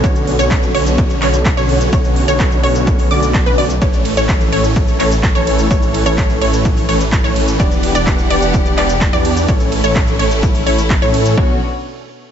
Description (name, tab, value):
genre	EDM, festival progressive house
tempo	127 BPM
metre	4/4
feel	straight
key	B minor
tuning	A4 = 439 Hz
part	rich studio string section	sustained chords	0.0-11.6 s	B2 to F#5	-24 LUFS	left 1 dB	sidechain pumping
part	wide unison pluck	arpeggios	0.0-11.6 s	B4 to D6	-20 LUFS	equal	sidechain pumping, ping-pong delay
part	supersaw chords	riff	0.0-11.6 s	D3 to D5	-18 LUFS	right 1 dB	sidechain pumping, ping-pong delay
part	detuned saw bass	bass	0.0-11.6 s	E1 to A2	-19 LUFS	equal	sidechain pumping
part	big-room dance drum kit	drums	0.0-11.4 s	handclaps, hi-hat, ride cymbal, shaker	-24 LUFS	right 1 dB	overdrive
part	electronic kick drum	drums	0.0-11.5 s	none	-16 LUFS	equal	overdrive
room	digital ambience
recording	nothing above 7.8 kHz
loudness	-11 LUFS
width	side -9 dB against mid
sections	0.0-11.4 A section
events	drop 0.0-11.4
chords	0.0 Bmadd9; 3.8 A; 7.6 Em7; 9.5 A; 11.4 Bmadd9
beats	| 0.04 0.51 0.98 1.45 | 1.93 2.40 2.87 3.34 | 3.82 4.29 4.76 5.23 | 5.71 6.18 6.65 7.12 | 7.60 8.07 8.54 9.01 | 9.49 9.96 10.43 10.90 | 11.38